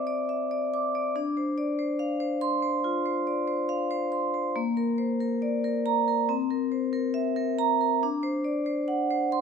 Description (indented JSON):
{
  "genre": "classical, contemporary piece for solo vibraphone",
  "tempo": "69 BPM",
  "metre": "4/4",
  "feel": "rubato",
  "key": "unclear",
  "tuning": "A4 = 440 Hz",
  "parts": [
    { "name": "vibraphone with medium hard mallets", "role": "solo", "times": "0.0-9.4 s", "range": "Bb3 to D6", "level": "-25 LUFS", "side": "equal", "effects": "none" }
  ],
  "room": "light reverb",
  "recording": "close, detailed microphones",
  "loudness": "-25 LUFS",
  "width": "side -6 dB against mid",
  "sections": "0.0-9.4 A section",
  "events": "none",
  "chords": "0.0 Cadd9; 1.2 Dm7; 4.6 Bbadd9; 6.3 C7; 8.0 D7",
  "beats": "0.30 | 1.16 2.00 2.84 3.69 | 4.55 5.43 6.29 7.15 | 8.02 8.89"
}